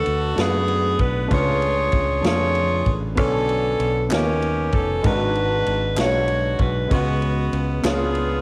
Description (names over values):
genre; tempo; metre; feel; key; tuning
slow gospel; 64 BPM (dotted quarters); 6/8; straight; unclear; A4 = 440 Hz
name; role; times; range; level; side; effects
clear saxophone section; melody; 0.0-8.4 s; B3 to C#5; -25 LUFS; equal; cassette tape
warm concert grand piano; accompaniment; 0.0-8.4 s; G#2 to C#5; -28 LUFS; equal; cassette tape
fingered electric bass; bass; 0.0-8.4 s; E#1 to F#2; -27 LUFS; equal; none
swinging big-band drum kit; drums; 0.1-8.3 s; kick drum, ride cymbal, snare drum; -28 LUFS; equal; cassette tape
group handclap; percussion; 4.1-8.1 s; none; -35 LUFS; equal; none
room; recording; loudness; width
moderate spring reverb, RT60 1.7 s, small room reverb; home recording on cassette; -21 LUFS; mono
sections
0.0-8.4 A section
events
none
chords
0.0 D6; 1.3 C#7b9b13; 3.2 Bm9; 4.1 D#7b13; 5.0 G#m7b5; 6.9 C#7sus4; 7.8 C#7b9